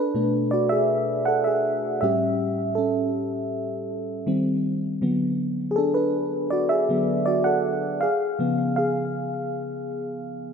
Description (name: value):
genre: R&B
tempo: 80 BPM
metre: 4/4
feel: straight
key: unclear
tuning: A4 = 439 Hz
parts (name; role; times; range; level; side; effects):
- mellow FM electric piano; solo; 0.0-10.5 s; A2 to F#5; -22 LUFS; equal; chorus, ping-pong delay
room: wet plate reverb, RT60 2.7 s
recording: dreamy mix soaked in reverb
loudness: -22 LUFS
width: side -6 dB against mid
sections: 0.0-10.5 A section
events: FM electric piano solo 0.0-10.5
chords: 0.0 Bm7; 2.0 A7; 4.3 D#6; 5.0 D6; 8.0 C#7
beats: 0.52 1.27 | 2.02 2.77 3.52 4.27 | 5.02 5.77 6.52 7.27 | 8.02 8.77 9.52 10.27